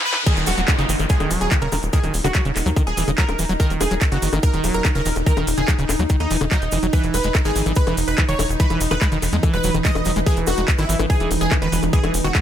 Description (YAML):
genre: psychedelic trance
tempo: 144 BPM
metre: 4/4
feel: straight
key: Eb phrygian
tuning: A4 = 440 Hz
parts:
  - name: riser and downlifter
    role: sound effects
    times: 0.0-3.6 s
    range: none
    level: -27 LUFS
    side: left 1 dB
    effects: none
  - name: supersaw stab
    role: melody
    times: 0.1-12.4 s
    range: Eb4 to Eb5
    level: -26 LUFS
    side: right 1 dB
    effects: phaser, sidechain pumping, tape echo
  - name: drum and bass drum kit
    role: drums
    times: 0.1-12.4 s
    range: bongos, crash cymbal, handclaps, hi-hat, snare drum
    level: -26 LUFS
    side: left 2 dB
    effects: none
  - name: evolving wavetable pad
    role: sustained chords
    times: 1.8-12.4 s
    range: Eb4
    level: -30 LUFS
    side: right 2 dB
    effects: phaser, built-in reverb, sidechain pumping
  - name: liquid acid bass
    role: riff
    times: 0.3-12.4 s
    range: Db3 to Ab3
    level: -25 LUFS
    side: equal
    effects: chorus, auto-pan, cassette tape, sidechain pumping, digital delay
  - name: electronic kick drum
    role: drums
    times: 0.3-12.4 s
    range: none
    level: -17 LUFS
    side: equal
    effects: high-pass filter on kick, high-pass filter on room
  - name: cabasa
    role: percussion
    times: 0.3-12.4 s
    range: none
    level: -32 LUFS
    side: right 2 dB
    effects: none
  - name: deep dark ambient pad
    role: texture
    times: 2.2-12.4 s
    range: E3 to B5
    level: -29 LUFS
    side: left 1 dB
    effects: chorus, built-in reverb, sidechain pumping
  - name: tight sequencer bass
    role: bass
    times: 0.4-12.3 s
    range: Eb1 to E2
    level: -23 LUFS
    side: equal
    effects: high-pass filter
room: little or no reverb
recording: high-pass filter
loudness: -17 LUFS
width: side -10 dB against mid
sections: 0.3-12.4 A section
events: break 0.0; drum fill 0.0; riser 0.0; drop 0.3-12.4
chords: 0.3 Eb5; 6.9 E5